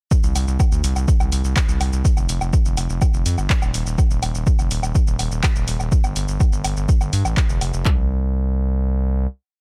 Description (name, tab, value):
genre	melodic techno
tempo	124 BPM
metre	4/4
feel	straight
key	unclear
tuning	A4 = 441 Hz
part	punchy analog drum machine	drums	0.1-7.8 s	handclaps, hi-hat, shaker, woodblock	-29 LUFS	equal	none
part	techno drum kit	drums	0.1-8.0 s	handclaps, kick drum	-20 LUFS	equal	none
part	gritty driven synth bass	bass	0.2-9.3 s	Eb1 to G2	-23 LUFS	equal	sidechain pumping
room	little or no reverb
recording	none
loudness	-20 LUFS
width	mono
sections	0.1-7.9 drop; 7.9-9.6 final chord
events	drop 0.1-7.9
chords	none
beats	| 0.11 0.60 1.08 1.56 | 2.05 2.53 3.02 3.50 | 3.98 4.47 4.95 5.44 | 5.92 6.40 6.89 7.37 | 7.86 8.34 8.82